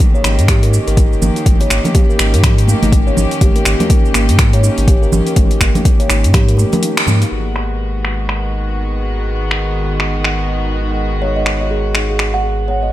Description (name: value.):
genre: afro house.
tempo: 123 BPM.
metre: 4/4.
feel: swing 60% on 16ths.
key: G# minor.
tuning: A4 = 440 Hz.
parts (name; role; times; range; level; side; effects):
rich chamber string section; sustained chords; 0.0-12.9 s; D#3 to G4; -22 LUFS; equal; sidechain pumping.
deep house drum kit; drums; 0.0-12.3 s; finger snaps, hi-hat, shaker; -19 LUFS; equal; overdrive, low-pass filter on hats, low-pass filter on perc, low-pass filter on snare, low-pass filter on room.
electronic kick drum; drums; 0.0-6.5 s; none; -12 LUFS; equal; overdrive.
congas; percussion; 0.0-7.2 s; none; -21 LUFS; equal; analog delay.
kalimba; arpeggios; 0.1-7.3, 11.2-12.9 s; A#3 to F#5; -21 LUFS; equal; sidechain pumping, analog delay.
warm sub bass; bass; 0.2-12.9 s; G#1 to G#2; -16 LUFS; equal; tube saturation, sidechain pumping.
room: little or no reverb.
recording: echo-heavy mix.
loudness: -12 LUFS.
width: side -14 dB against mid.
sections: 0.0-7.3 A section; 7.3-12.9 B section.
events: kick drops out 6.8-7.3; band accent 7.0.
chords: 0.0 D#7/G#; 7.3 G#m7.